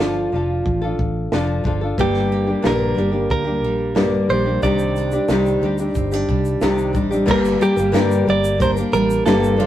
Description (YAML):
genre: acoustic pop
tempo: 91 BPM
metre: 4/4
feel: straight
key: G minor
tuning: A4 = 441 Hz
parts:
  - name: direct-recorded clean electric guitar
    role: melody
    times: 0.0-9.7 s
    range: F4 to D5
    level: -22 LUFS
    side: right 2 dB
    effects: none
  - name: nylon-string guitar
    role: accompaniment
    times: 0.0-9.7 s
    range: G2 to Bb4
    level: -19 LUFS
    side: left 2 dB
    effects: none
  - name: vintage muted fingered electric bass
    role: bass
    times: 0.0-9.7 s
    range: F1 to G2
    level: -24 LUFS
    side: equal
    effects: none
  - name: compact cocktail drum kit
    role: drums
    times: 0.7-9.6 s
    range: crash cymbal, kick drum, shaker, snare drum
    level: -24 LUFS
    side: right 1 dB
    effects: none
  - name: felt-muted upright piano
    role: accompaniment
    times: 2.0-9.7 s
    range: A3 to D5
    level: -37 LUFS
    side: left 2 dB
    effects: none
  - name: picked steel-string acoustic guitar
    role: arpeggios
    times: 2.0-9.7 s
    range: F3 to Eb4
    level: -27 LUFS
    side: right 4 dB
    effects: none
room: light reverb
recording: rough rehearsal-room recording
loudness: -16 LUFS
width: side -12 dB against mid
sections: 0.0-7.3 A section; 7.3-9.7 B section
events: none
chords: 0.0 Dm/F; 2.0 Gm; 4.6 Cmadd9; 7.3 Gm